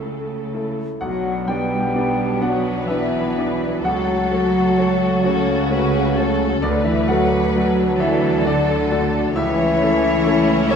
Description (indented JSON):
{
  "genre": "cinematic, emotional film score for orchestra",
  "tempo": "43 BPM (dotted quarters)",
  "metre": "6/8",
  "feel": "rubato",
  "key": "B minor",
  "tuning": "A4 = 440 Hz",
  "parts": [
    { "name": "bright grand piano", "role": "accompaniment", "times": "0.0-10.8 s", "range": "B1 to G5", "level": "-23 LUFS", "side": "left 3 dB", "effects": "none" },
    { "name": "warm studio viola section", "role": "accompaniment", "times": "0.0-10.8 s", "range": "F#3 to A4", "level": "-26 LUFS", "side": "right 3 dB", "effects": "none" },
    { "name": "warm studio cello section", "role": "bass", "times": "0.0-10.8 s", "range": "C#3 to G3", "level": "-25 LUFS", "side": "right 4 dB", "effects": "none" },
    { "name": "warm studio violin section", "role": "melody", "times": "1.0-10.8 s", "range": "D4 to F#4", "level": "-30 LUFS", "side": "left 4 dB", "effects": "none" },
    { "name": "hollow concert flute", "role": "second line", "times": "1.0-10.8 s", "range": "C#5 to G5", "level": "-26 LUFS", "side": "left 2 dB", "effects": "none" },
    { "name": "mellow clarinet", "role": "second line", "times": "1.0-10.8 s", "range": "C#4 to G4", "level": "-25 LUFS", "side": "left 3 dB", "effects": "none" },
    { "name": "mellow French horn section", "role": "sustained chords", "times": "1.0-10.7 s", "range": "C#3 to B3", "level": "-24 LUFS", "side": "left 2 dB", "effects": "none" },
    { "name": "dark studio double bass section", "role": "bass", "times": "1.0-10.8 s", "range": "B1 to D2", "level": "-27 LUFS", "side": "right 4 dB", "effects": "none" },
    { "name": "rich studio violin section", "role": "second line", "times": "2.4-10.8 s", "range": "A4 to E5", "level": "-27 LUFS", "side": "equal", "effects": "none" }
  ],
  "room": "wet scoring stage reverb, RT60 1.4 s",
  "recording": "minimal, uncompressed stereo recording",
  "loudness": "-16 LUFS",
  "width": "side -7 dB against mid",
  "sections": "0.0-1.0 A section; 1.0-10.8 A section",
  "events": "none",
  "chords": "0.0 A/C#; 1.0 Bm; 3.8 F#m/C#; 6.6 D; 9.4 A/C#",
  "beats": "| 1.03 2.43 | 3.84 5.25 | 6.63 8.00 | 9.36 10.72"
}